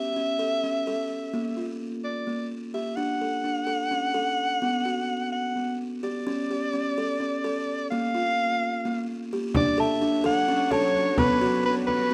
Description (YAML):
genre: contemporary instrumental, chamber music in an uneven meter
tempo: 256 BPM (eighths)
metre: 7/8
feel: straight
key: D major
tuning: A4 = 440 Hz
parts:
  - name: clear soprano saxophone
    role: melody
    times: 0.0-12.1 s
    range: B4 to F#5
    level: -29 LUFS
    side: equal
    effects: none
  - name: buzzing kalimba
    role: arpeggios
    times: 0.0-12.1 s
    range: Bb3 to A4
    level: -30 LUFS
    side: equal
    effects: none
  - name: shimmering ambient pad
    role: sustained chords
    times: 10.0-12.1 s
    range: F#3 to C#5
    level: -35 LUFS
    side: equal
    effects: chorus, built-in reverb
  - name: frame drum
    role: percussion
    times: 9.5-12.1 s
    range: none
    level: -33 LUFS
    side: equal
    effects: none
  - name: small celesta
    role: texture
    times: 9.8-11.4 s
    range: A5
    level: -36 LUFS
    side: equal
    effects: none
room: moderate recital hall reverb, RT60 1.4 s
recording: none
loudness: -26 LUFS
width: mono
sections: 0.0-9.5 A section; 9.5-12.1 B section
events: none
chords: 0.0 A; 1.3 Bb; 3.0 D; 4.6 Gmaj7; 6.3 A7; 7.9 Bb5; 9.5 Dmaj7; 11.2 Gmaj7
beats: 0.16 0.40 0.63 0.87 1.10 | 1.34 1.57 1.81 2.04 2.28 2.51 2.75 | 2.98 3.22 3.45 3.69 3.92 4.16 4.39 | 4.63 4.86 5.09 5.33 5.57 5.80 6.03 | 6.27 6.50 6.74 6.97 7.21 7.44 7.67 | 7.91 8.14 8.38 8.61 8.84 9.07 9.31 | 9.54 9.78 10.01 10.24 10.47 10.71 10.94 | 11.17 11.40 11.64 11.87 12.10